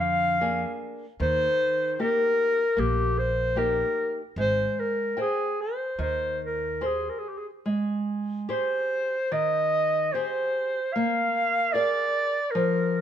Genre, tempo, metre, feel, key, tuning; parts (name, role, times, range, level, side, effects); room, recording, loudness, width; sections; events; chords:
fado-style ballad; 74 BPM; 4/4; rubato; Ab major; A4 = 439 Hz
mellow clarinet; melody; 0.0-13.0 s; G4 to F5; -24 LUFS; equal
nylon-string guitar; accompaniment; 0.0-13.0 s; D3 to G5; -30 LUFS; equal
upright bass; bass; 0.0-7.1 s; Ab1 to F2; -30 LUFS; equal
moderate stone room reverb, RT60 1.1 s; band playing live in one room; -23 LUFS; side -9 dB against mid
0.0-7.7 A section; 7.7-13.0 A section
0.0 Bb7; 1.2 Eb; 4.4 Abmaj7; 11.0 Bb7